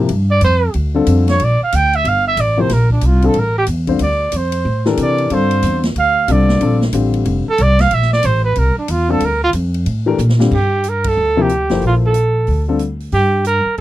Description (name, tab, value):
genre	modal jazz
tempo	184 BPM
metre	4/4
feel	swing 63% on 8ths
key	G dorian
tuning	A4 = 440 Hz
part	warm baby grand piano	accompaniment	0.0-12.8 s	C3 to C5	-17 LUFS	left 5 dB	none
part	upright bass	bass	0.0-13.8 s	F1 to C3	-16 LUFS	equal	none
part	swinging big-band drum kit	drums	0.1-13.8 s	crash cymbal, hi-hat, kick drum, ride cymbal, snare drum	-27 LUFS	equal	none
part	breathy trumpet	melody	0.3-13.8 s	D4 to G5	-16 LUFS	right 3 dB	none
room	little or no reverb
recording	dry, close 1970s-style studio recording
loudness	-12 LUFS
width	side -14 dB against mid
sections	0.0-10.5 A section; 10.5-13.8 B section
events	trumpet solo 0.0-10.5; drum fill 10.2-10.5; band accent 11.0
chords	0.0 Gm11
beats	| 0.08 0.41 0.74 1.06 | 1.39 1.72 2.04 2.37 | 2.69 3.02 3.35 3.67 | 4.00 4.32 4.65 4.98 | 5.30 5.63 5.95 6.28 | 6.61 6.93 7.26 7.58 | 7.91 8.23 8.56 8.89 | 9.21 9.54 9.86 10.19 | 10.52 10.84 11.17 11.49 | 11.82 12.15 12.47 12.80 | 13.13 13.45 13.78